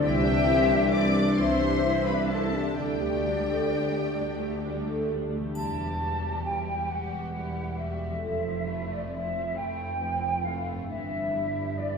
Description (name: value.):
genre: cinematic, emotional film score for orchestra.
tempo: 44 BPM (dotted quarters).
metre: 6/8.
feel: rubato.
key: E minor from 5.5 s.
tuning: A4 = 443 Hz.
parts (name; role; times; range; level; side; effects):
bright studio violin section; melody; 0.0-12.0 s; D4 to D6; -39 LUFS; left 3 dB; none.
mellow clarinet; second line; 0.0-5.1 s; G4 to D5; -34 LUFS; left 2 dB; none.
rich studio violin section; second line; 0.0-12.0 s; B3 to D5; -40 LUFS; left 4 dB; none.
small flute group; second line; 0.0-12.0 s; D5 to A5; -30 LUFS; left 2 dB; none.
clear studio viola section; accompaniment; 0.0-12.0 s; E3 to G4; -34 LUFS; right 1 dB; none.
warm French horn section; sustained chords; 0.0-5.2 s; D3 to D4; -31 LUFS; left 3 dB; none.
concert harp; arpeggios; 0.0-12.0 s; G2 to A5; -34 LUFS; equal; none.
bright studio double bass section; bass; 0.0-12.0 s; E1 to D2; -34 LUFS; right 2 dB; none.
rich studio cello section; bass; 0.0-12.0 s; C2 to G2; -33 LUFS; right 2 dB; none.
triangle; percussion; 5.6-7.3 s; none; -52 LUFS; left 3 dB; none.
room: wet scoring stage reverb, RT60 1.7 s.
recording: heard from further back in the room.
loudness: -25 LUFS.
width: side -5 dB against mid.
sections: 0.0-5.5 A section; 5.5-12.0 B section.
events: none.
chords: 0.0 Cadd9; 2.8 Dsus4; 5.5 Emadd9; 8.2 Fmaj7; 10.9 G6.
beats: | 0.02 1.38 | 2.76 4.15 | 5.55 6.91 | 8.25 9.57 | 10.89.